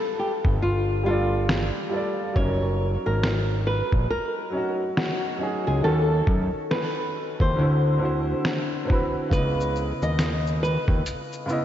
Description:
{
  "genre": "lo-fi hip hop",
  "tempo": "69 BPM",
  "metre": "4/4",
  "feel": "swing 61% on 16ths",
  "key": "unclear",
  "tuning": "A4 = 441 Hz",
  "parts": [
    { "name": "flamenco guitar", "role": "melody", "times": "0.0-11.6 s", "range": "F4 to D#5", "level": "-28 LUFS", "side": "left 1 dB", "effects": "low-pass filter, tape echo" },
    { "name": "warm upright piano", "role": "accompaniment", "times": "0.0-11.6 s", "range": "C#3 to D#5", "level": "-28 LUFS", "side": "equal", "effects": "cassette tape, low-pass filter" },
    { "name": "trip hop sampler-style drum kit", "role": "drums", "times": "0.4-11.6 s", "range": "finger snaps, hi-hat, kick drum, shaker, snare drum", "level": "-26 LUFS", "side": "equal", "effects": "vintage 12-bit sampler grit" },
    { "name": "fat analog bass", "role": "bass", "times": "0.5-11.0 s", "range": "F#1 to F#2", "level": "-24 LUFS", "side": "equal", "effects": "none" }
  ],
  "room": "moderate lush hall reverb, RT60 2.7 s",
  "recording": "dreamy mix soaked in reverb, cassette tape, nothing above 7.8 kHz",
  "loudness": "-22 LUFS",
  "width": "side -11 dB against mid",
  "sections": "0.0-11.6 A section",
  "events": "break 0.0-9.3",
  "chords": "0.0 G9; 2.4 F#6; 5.8 D#m7b5; 7.6 D13; 9.3 C#m9",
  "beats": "0.62 1.49 | 2.35 3.22 4.09 4.96 | 5.83 6.70 7.57 8.44 | 9.31 10.18 11.05"
}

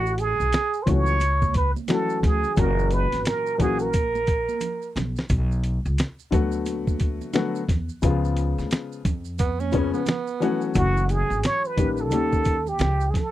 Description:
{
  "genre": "hip hop, jazz-hop",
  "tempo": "88 BPM",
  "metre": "4/4",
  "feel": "swing 62% on 16ths",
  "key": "F# minor",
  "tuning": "A4 = 440 Hz",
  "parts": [
    { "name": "trumpet with plunger mute", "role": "melody", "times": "0.0-5.0, 10.8-13.3 s", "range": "F#4 to C#5", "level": "-24 LUFS", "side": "right 3 dB", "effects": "none" },
    { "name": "upright bass", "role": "bass", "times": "0.0-13.1 s", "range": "F#1 to E#2", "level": "-25 LUFS", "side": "equal", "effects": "none" },
    { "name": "maracas and congas", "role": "percussion", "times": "0.1-13.3 s", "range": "none", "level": "-36 LUFS", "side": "right 9 dB", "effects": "none" },
    { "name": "dusty soul sampler-style drum kit", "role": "drums", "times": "0.2-13.3 s", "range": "hi-hat, kick drum, snare drum", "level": "-24 LUFS", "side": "equal", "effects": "none" },
    { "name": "dark upright piano", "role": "accompaniment", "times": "0.9-12.6 s", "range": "A#2 to G4", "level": "-26 LUFS", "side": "left 5 dB", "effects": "none" },
    { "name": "growling tenor saxophone", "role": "second line", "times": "9.4-10.7 s", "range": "B3 to C#4", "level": "-29 LUFS", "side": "right 7 dB", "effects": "none" }
  ],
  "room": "little or no reverb",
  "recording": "dry, close 1970s-style studio recording",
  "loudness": "-21 LUFS",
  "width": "side -14 dB against mid",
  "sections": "0.0-13.3 A section",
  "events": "drum fill 4.6-5.3",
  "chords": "0.0 A6; 2.6 F#7; 5.3 Bm7; 8.0 C#7; 10.8 F#m7; 12.1 D#7",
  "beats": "0.53 1.21 1.89 | 2.58 3.26 3.94 4.62 | 5.30 5.98 6.67 7.35 | 8.03 8.71 9.39 10.07 | 10.76 11.44 12.12 12.80"
}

